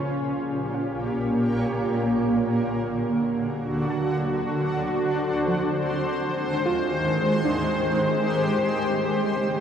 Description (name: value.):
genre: ambient.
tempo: 76 BPM.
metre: 4/4.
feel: straight.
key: unclear.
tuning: A4 = 444 Hz.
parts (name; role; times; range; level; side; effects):
granular cloud pad; sustained chords; 0.0-9.6 s; Bb2 to Db5; -22 LUFS; equal; built-in reverb.
soft round pluck; arpeggios; 0.0-8.8 s; F3 to A5; -33 LUFS; right 2 dB; wide subtle chorus, tape echo.
room: wet huge ambient reverb, RT60 7.6 s.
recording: in a vast, echoing space.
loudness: -22 LUFS.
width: side -8 dB against mid.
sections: 0.0-9.6 A section.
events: fade-in on synth pluck 0.0-9.6.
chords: 0.0 Bbm6; 2.3 D7; 5.5 Abmaj7; 8.6 Dbmaj7.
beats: 0.74 1.53 | 2.32 3.11 3.90 4.69 | 5.47 6.26 7.05 7.84 | 8.63 9.42.